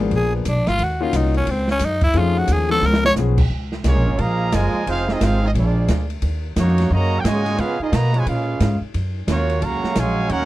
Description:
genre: jazz, big band swing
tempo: 177 BPM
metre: 4/4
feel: swing 63% on 8ths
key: Db major from 3.5 s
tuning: A4 = 440 Hz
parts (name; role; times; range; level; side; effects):
- warm grand piano; accompaniment; 0.0-3.4 s; F3 to Ab4; -23 LUFS; left 8 dB; none
- upright bass; bass; 0.0-10.5 s; F1 to Db3; -20 LUFS; equal; none
- open jazz drum kit; drums; 0.1-10.5 s; crash cymbal, hi-hat, kick drum, ride cymbal, snare drum; -26 LUFS; right 1 dB; none
- growling tenor saxophone; melody; 0.2-3.1 s; Cb4 to Db5; -20 LUFS; equal; none
- dark trombone section; second line; 3.8-10.5 s; Bb2 to Gb4; -25 LUFS; right 5 dB; none
- clear trumpet section; melody; 3.9-10.5 s; Bb3 to Bb5; -24 LUFS; right 1 dB; none
room: little or no reverb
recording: dry, close 1970s-style studio recording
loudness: -17 LUFS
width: side -16 dB against mid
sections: 0.0-3.5 A section; 3.5-10.5 B section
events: tenor saxophone solo 0.0-3.5; drum fill 2.8-3.2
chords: 0.0 Bb7b9; 0.8 Ebm9; 2.1 F7alt; 2.8 Db7; 3.5 Db69; 4.9 Fm7; 5.5 Bb7; 6.2 Ebm7; 7.6 Db7; 8.9 Gbmaj7

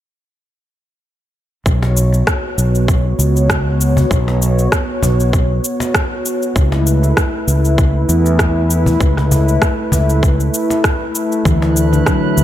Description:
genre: organic downtempo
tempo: 98 BPM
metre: 4/4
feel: swing 55% on 16ths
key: unclear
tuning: A4 = 439 Hz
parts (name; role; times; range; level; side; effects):
- warm analog pad; sustained chords; 1.7-12.4 s; D3 to C#5; -19 LUFS; equal; lush chorus, sidechain pumping
- fretless electric bass; bass; 1.7-12.4 s; B1 to E2; -14 LUFS; equal; sidechain pumping
- electronic kick drum; drums; 1.7-12.2 s; none; -17 LUFS; equal; overdrive
- electronic shaker and rim click; drums; 1.7-12.4 s; none; -20 LUFS; equal; none
- cajon; percussion; 1.8-12.0 s; none; -22 LUFS; left 1 dB; none
- handpan; arpeggios; 11.5-12.2 s; D3 to F#3; -16 LUFS; left 1 dB; digital delay
- drifting glass-harmonics texture; texture; 11.6-12.4 s; B4; -24 LUFS; right 4 dB; chorus, built-in reverb
room: light reverb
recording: none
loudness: -12 LUFS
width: side -12 dB against mid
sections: 1.7-12.4 A section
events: none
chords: 1.7 B5; 6.6 A/C#; 11.5 Dadd9

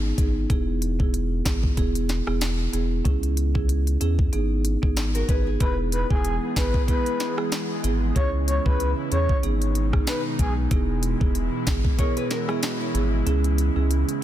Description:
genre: dancehall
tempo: 94 BPM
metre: 4/4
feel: swing 56% on 16ths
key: unclear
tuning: A4 = 439 Hz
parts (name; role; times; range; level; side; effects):
- nylon-string guitar; arpeggios; 0.0-0.3, 5.0-5.8, 12.0-13.2 s; C#4 to C#5; -33 LUFS; left 2 dB; ping-pong delay
- saturated sub bass; bass; 0.0-14.0 s; E1 to E2; -24 LUFS; equal; none
- marimba with soft mallets; accompaniment; 0.2-14.2 s; B3 to G#4; -28 LUFS; right 4 dB; sidechain pumping
- afro-pop drum kit; drums; 0.2-14.2 s; hi-hat, kick drum, rim click, snare drum; -24 LUFS; equal; none
- breathy flute-like synth lead; melody; 5.6-10.5 s; G#4 to C#5; -29 LUFS; left 2 dB; chorus, ping-pong delay
- airy breathy pad; sustained chords; 5.6-14.2 s; B2 to G#4; -31 LUFS; left 1 dB; chorus, sidechain pumping
room: little or no reverb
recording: dense, heavily limited modern master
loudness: -21 LUFS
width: side -12 dB against mid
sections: 0.0-5.6 A section; 5.6-14.2 B section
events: kick muted 13.3-14.2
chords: 0.5 E; 3.1 C#m; 4.3 G#m; 5.6 E; 8.2 C#m; 9.4 G#m; 10.7 E; 13.3 C#m

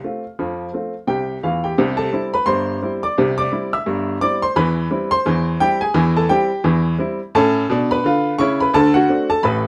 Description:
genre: ragtime piano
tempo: 86 BPM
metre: 2/4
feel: swing 59% on 16ths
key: C major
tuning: A4 = 441 Hz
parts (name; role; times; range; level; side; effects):
- clear upright piano; solo; 0.0-9.7 s; G1 to F6; -18 LUFS; equal; none
room: moderate studio reverb, RT60 0.7 s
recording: none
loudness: -18 LUFS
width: mono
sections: 0.0-1.8 A section; 1.8-9.7 B section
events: none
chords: 0.0 F; 1.8 C; 4.6 C/E; 7.3 A; 8.7 D7

